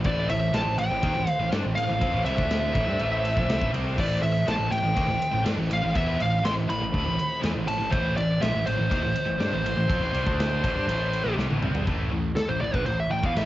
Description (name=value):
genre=heavy metal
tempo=122 BPM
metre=4/4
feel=straight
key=A minor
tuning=A4 = 439 Hz
part: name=muted studio string section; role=sustained chords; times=0.0-11.8 s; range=E3 to C5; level=-37 LUFS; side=left 2 dB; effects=none
part: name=scooped high-gain guitar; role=riff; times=0.0-13.5 s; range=A2 to E4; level=-31 LUFS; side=right 5 dB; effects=distortion
part: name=tight distorted guitar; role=riff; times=0.0-13.5 s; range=A2 to E4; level=-34 LUFS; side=left 8 dB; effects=distortion
part: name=fuzz picked electric bass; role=bass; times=0.0-13.5 s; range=A1 to G2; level=-29 LUFS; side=equal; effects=overdrive
part: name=big rock drum kit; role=drums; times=0.0-13.5 s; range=china cymbal, crash cymbal, kick drum, ride cymbal, snare drum, toms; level=-30 LUFS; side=equal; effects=cassette tape
part: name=high-gain lead guitar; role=melody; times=0.1-13.5 s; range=A4 to C6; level=-28 LUFS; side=equal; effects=distortion, cassette tape
room=light reverb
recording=home recording on cassette, nothing above 7.6 kHz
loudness=-23 LUFS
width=side -15 dB against mid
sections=0.0-11.9 A section; 11.9-13.5 B section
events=drum fill 11.4-11.9; lead electric guitar solo 11.9-13.5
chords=0.0 Am; 11.9 A5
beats=| 0.04 0.53 1.02 1.51 | 2.01 2.50 2.99 3.48 | 3.97 4.46 4.96 5.45 | 5.94 6.44 6.93 7.42 | 7.92 8.41 8.90 9.40 | 9.89 10.38 10.88 11.37 | 11.87 12.37 12.86 13.36